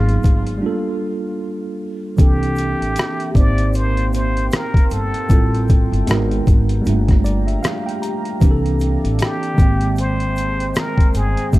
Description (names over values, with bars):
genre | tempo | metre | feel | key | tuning
lo-fi hip hop | 77 BPM | 4/4 | swing 59% on 16ths | unclear | A4 = 440 Hz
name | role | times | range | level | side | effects
trumpet with plunger mute | melody | 0.0-11.6 s | F4 to D5 | -25 LUFS | left 1 dB | tape echo
tine electric piano | accompaniment | 0.0-11.6 s | Eb3 to Bb5 | -22 LUFS | right 2 dB | medium stereo tremolo
upright bass | bass | 0.0-11.6 s | G1 to C2 | -19 LUFS | equal | none
boom bap sampler-style drum kit | drums | 0.1-11.6 s | hi-hat, kick drum, rim click | -15 LUFS | equal | overdrive
egg shaker | percussion | 0.2-11.6 s | none | -46 LUFS | left 4 dB | none
deep dark ambient pad | sustained chords | 2.6-11.6 s | Ab3 to D6 | -31 LUFS | equal | chorus, built-in reverb
room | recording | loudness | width
studio reverb | dark, warm production | -15 LUFS | side -18 dB against mid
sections
0.0-11.6 A section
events
break 0.0-2.2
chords
0.0 Abm9; 0.6 Gm9; 2.2 C13; 3.4 Abmaj9; 5.3 Fmaj9/A; 6.1 Abm9; 6.9 Gm9; 8.4 C13; 9.6 Abmaj9